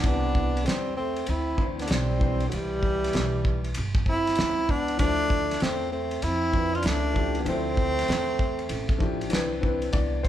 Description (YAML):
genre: hip hop, jazz-hop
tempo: 97 BPM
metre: 4/4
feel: swing 65% on 16ths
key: C major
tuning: A4 = 440 Hz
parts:
  - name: breathy tenor saxophone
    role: melody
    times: 0.0-9.3 s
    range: F#3 to F4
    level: -27 LUFS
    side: equal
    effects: none
  - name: breathy trombone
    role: second line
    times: 0.0-9.3 s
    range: D3 to D4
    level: -33 LUFS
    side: right 4 dB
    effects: none
  - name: dark concert grand piano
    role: accompaniment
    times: 0.0-10.3 s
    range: C3 to D5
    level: -32 LUFS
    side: left 4 dB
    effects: none
  - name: upright bass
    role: bass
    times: 0.0-10.3 s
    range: G1 to F2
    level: -30 LUFS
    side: equal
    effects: none
  - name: cloth-damped thuddy drum kit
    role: drums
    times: 0.0-10.3 s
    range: hi-hat, kick drum, ride cymbal, snare drum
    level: -28 LUFS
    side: equal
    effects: none
room: light reverb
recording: band playing live in one room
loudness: -23 LUFS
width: side -11 dB against mid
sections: 0.0-9.9 A section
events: none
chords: 0.0 Cmaj9; 5.0 Dm9; 9.3 Cmaj9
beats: | 0.04 0.66 1.27 1.89 | 2.51 3.13 3.75 4.37 | 4.99 5.61 6.22 6.84 | 7.46 8.08 8.70 9.32 | 9.94